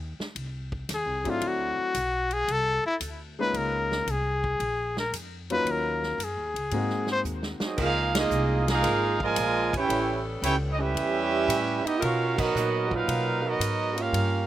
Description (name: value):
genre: jazz, big band swing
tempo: 113 BPM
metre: 4/4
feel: swing 69% on 8ths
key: unclear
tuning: A4 = 440 Hz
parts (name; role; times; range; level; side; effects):
- upright bass; bass; 0.0-14.5 s; Ab1 to Cb3; -32 LUFS; equal; none
- swinging big-band drum kit; drums; 0.2-14.3 s; crash cymbal, hi-hat, kick drum, ride cymbal, snare drum; -35 LUFS; equal; none
- warm trumpet; melody; 0.9-7.2 s; E4 to C5; -27 LUFS; left 2 dB; slapback echo
- clear concert grand piano; accompaniment; 1.2-7.6 s; Gb3 to Gb4; -31 LUFS; left 2 dB; none
- clear trumpet section; melody; 7.6-14.5 s; Bb3 to Ab5; -26 LUFS; right 2 dB; none
- warm trombone section; second line; 7.6-14.5 s; Bb2 to Bb4; -29 LUFS; right 4 dB; none
- warm saxophone section; sustained chords; 7.8-12.8 s; F3 to Bb4; -35 LUFS; left 1 dB; none
room: little or no reverb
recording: recorded outdoors, with no room sound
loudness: -24 LUFS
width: side -13 dB against mid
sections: 0.0-7.8 A section; 7.8-14.5 B section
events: trumpet solo 0.0-7.8; drum fill 7.3-7.8; band accent 8.0, 12.3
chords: 0.0 Fm7 (rootless); 1.4 D9; 3.5 Db69; 4.6 Bb5; 5.7 Ebm7; 6.7 Ab7; 7.8 Db69; 9.9 A9; 12.0 Cbmaj7